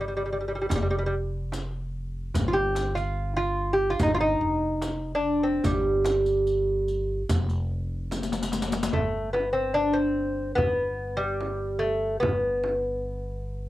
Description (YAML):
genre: Persian modal ensemble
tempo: 73 BPM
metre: 4/4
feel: straight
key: G dastgah shur, G dastgah mahur from 8.9 s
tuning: A4 = 440 Hz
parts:
  - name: lute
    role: melody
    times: 0.0-13.7 s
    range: G3 to G4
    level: -25 LUFS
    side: equal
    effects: none
  - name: upright bass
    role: bass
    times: 0.0-13.7 s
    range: F1 to G1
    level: -31 LUFS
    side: equal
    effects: none
  - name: frame drum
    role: percussion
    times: 0.7-12.8 s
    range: none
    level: -33 LUFS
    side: right 4 dB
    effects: none
  - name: riq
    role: percussion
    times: 0.7-8.9 s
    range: none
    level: -32 LUFS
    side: left 4 dB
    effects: none
  - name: tombak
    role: percussion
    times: 0.7-12.9 s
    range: none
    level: -32 LUFS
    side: equal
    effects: none
room: light reverb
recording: home recording on cassette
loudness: -24 LUFS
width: side -15 dB against mid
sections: 0.0-8.9 A section; 8.9-13.7 B section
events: drum fill 8.1-8.9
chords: none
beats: 0.71 1.53 | 2.35 3.17 4.00 4.82 | 5.64 6.46 7.29 8.11 | 8.94 9.76 10.58 11.41 | 12.23 13.06